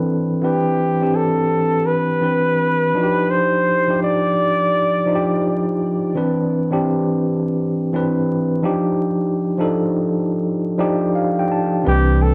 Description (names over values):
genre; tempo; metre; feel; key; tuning
lo-fi hip hop; 84 BPM; 4/4; swing 64% on 16ths; unclear; A4 = 440 Hz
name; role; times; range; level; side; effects
tine electric piano; accompaniment; 0.0-12.3 s; E3 to A5; -20 LUFS; equal; low-pass filter
breathy flugelhorn; melody; 0.4-5.8, 11.9-12.3 s; G4 to D5; -21 LUFS; equal; low-pass filter
sub bass with octave; bass; 11.9-12.3 s; C2; -17 LUFS; equal; none
room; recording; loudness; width
wet studio reverb, RT60 0.6 s; worn, warbling old tape, cassette tape, vinyl crackle, warbly pitch drift; -19 LUFS; mono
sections
0.4-11.9 A section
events
break 0.0-0.4; tine electric piano fill 10.4-11.9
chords
0.4 Cmaj9; 2.9 Ebmaj9; 6.1 Cmaj9; 8.6 Ebmaj9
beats
| 0.42 1.14 1.85 2.57 | 3.28 4.00 4.71 5.42 | 6.14 6.85 7.57 8.28 | 9.00 9.71 10.43 11.14 | 11.85